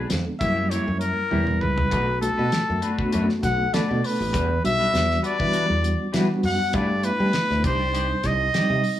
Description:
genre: electric jazz fusion.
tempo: 100 BPM.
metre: 4/4.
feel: straight.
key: unclear.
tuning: A4 = 440 Hz.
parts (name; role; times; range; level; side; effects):
mellow reed electric piano; accompaniment; 0.0-9.0 s; A#2 to A4; -27 LUFS; right 1 dB; fast tremolo.
clean electric guitar; stabs; 0.0-8.9 s; G3 to D5; -31 LUFS; left 4 dB; lush chorus.
fingered electric bass; bass; 0.0-8.8 s; A1 to G3; -25 LUFS; equal; none.
damped 70s drum kit; drums; 0.1-9.0 s; hi-hat, kick drum, snare drum, toms; -29 LUFS; equal; none.
clear trumpet; melody; 0.4-9.0 s; A4 to F#5; -24 LUFS; left 1 dB; slapback echo, plate reverb.
room: moderate studio reverb, RT60 0.7 s.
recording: small room ambience.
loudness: -20 LUFS.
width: side -12 dB against mid.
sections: 0.0-9.0 A section.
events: trumpet solo 0.0-9.0; drum fill 1.3-1.9.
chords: 0.4 F#7b9; 1.9 Bm7; 4.3 Em9; 6.7 G69; 7.6 Cmadd9.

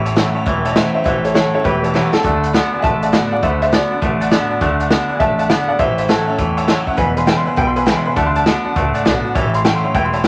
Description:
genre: rockabilly.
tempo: 202 BPM.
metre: 4/4.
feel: swing 64% on 8ths.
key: A mixolydian.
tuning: A4 = 437 Hz.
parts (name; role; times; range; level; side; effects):
picked steel-string acoustic guitar; accompaniment; 0.0-10.3 s; E2 to F#4; -26 LUFS; equal; none.
twangy electric guitar; riff; 0.0-10.3 s; E2 to B3; -23 LUFS; equal; spring reverb.
upright bass; bass; 0.0-10.3 s; E1 to E2; -25 LUFS; equal; none.
tack piano; accompaniment; 0.1-10.3 s; B4 to B5; -26 LUFS; equal; none.
vintage drum kit; drums; 0.1-10.3 s; hi-hat, kick drum, snare drum; -22 LUFS; equal; none.
clear upright piano; melody; 0.7-10.3 s; G4 to C6; -21 LUFS; equal; none.
room: moderate studio ambience, RT60 0.5 s.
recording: vinyl crackle.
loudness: -16 LUFS.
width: mono.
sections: 0.0-10.3 A section.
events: drum fill 1.9; honky-tonk piano fill 4.0-4.6.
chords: 0.0 A; 2.2 D; 5.8 A; 7.0 E; 8.2 D; 9.4 A.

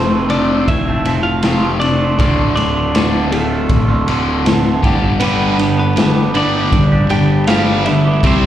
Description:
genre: quiet-loud alternative rock.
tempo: 80 BPM.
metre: 4/4.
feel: straight.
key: unclear.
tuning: A4 = 440 Hz.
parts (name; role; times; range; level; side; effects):
clean electric guitar; melody; 0.0-8.5 s; A3 to G5; -20 LUFS; equal; slapback echo, analog delay.
twangy electric guitar; arpeggios; 0.0-8.5 s; D2 to C5; -20 LUFS; right 2 dB; phaser, slapback echo.
cranked stack guitar; riff; 0.0-8.5 s; D2 to C4; -20 LUFS; left 6 dB; overdrive.
fuzz picked electric bass; bass; 0.0-8.5 s; D1 to C2; -18 LUFS; equal; overdrive.
raw garage drum kit; drums; 0.3-8.4 s; kick drum, ride cymbal, snare drum; -18 LUFS; equal; none.
heavy high-gain guitar; riff; 5.2-8.5 s; G2 to C4; -18 LUFS; right 5 dB; distortion, slapback echo.
room: small room ambience.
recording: live gig heard through the venue's PA, club reverb.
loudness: -12 LUFS.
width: side -11 dB against mid.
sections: 0.0-8.5 A section.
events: none.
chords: 0.0 F; 2.2 Dm; 4.8 G.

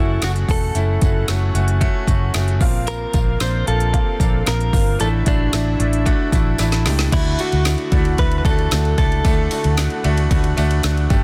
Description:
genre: piano-driven pop.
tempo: 113 BPM.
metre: 4/4.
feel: straight.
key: D major.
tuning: A4 = 440 Hz.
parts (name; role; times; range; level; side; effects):
direct-recorded clean electric guitar; melody; 0.0-10.5 s; D4 to C5; -27 LUFS; equal; delay.
bright upright piano; accompaniment; 0.0-11.2 s; G2 to B5; -27 LUFS; equal; none.
accordion; sustained chords; 0.0-11.2 s; C3 to F#4; -36 LUFS; equal; none.
vintage muted fingered electric bass; bass; 0.0-11.2 s; E1 to D2; -21 LUFS; equal; none.
deep house drum kit; drums; 0.2-11.2 s; crash cymbal, hi-hat, kick drum, ride cymbal, snare drum; -22 LUFS; equal; none.
tambourine; percussion; 0.2-11.2 s; none; -40 LUFS; equal; none.
room: small room ambience.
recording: dense, heavily limited modern master.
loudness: -18 LUFS.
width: mono.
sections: 0.0-7.1 A section; 7.1-11.2 B section.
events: upright piano fill 6.1-7.1; drum fill 6.6-7.1.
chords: 0.0 F#m; 2.6 Bbsus2; 5.0 Asus4; 7.1 D.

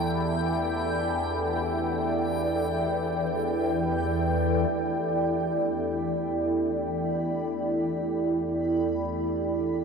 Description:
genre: dark ambient drone.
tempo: free time.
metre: none.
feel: none.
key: E minor.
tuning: A4 = 441 Hz.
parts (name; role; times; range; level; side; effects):
deep dark ambient pad; sustained chords; 0.0-9.8 s; E4 to G5; -26 LUFS; right 1 dB; chorus, built-in reverb.
overtone-sweeping drone; drone; 0.0-9.8 s; E2 to E3; -30 LUFS; left 1 dB; chorus, built-in reverb, phaser.
backwards swelling texture; texture; 0.0-9.8 s; G5 to B5; -38 LUFS; left 2 dB; built-in reverb.
room: wet huge ambient reverb, RT60 7.6 s.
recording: cassette tape.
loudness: -25 LUFS.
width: side -5 dB against mid.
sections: 0.0-4.7 A section; 4.7-9.8 B section.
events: none.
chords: 0.0 Em7.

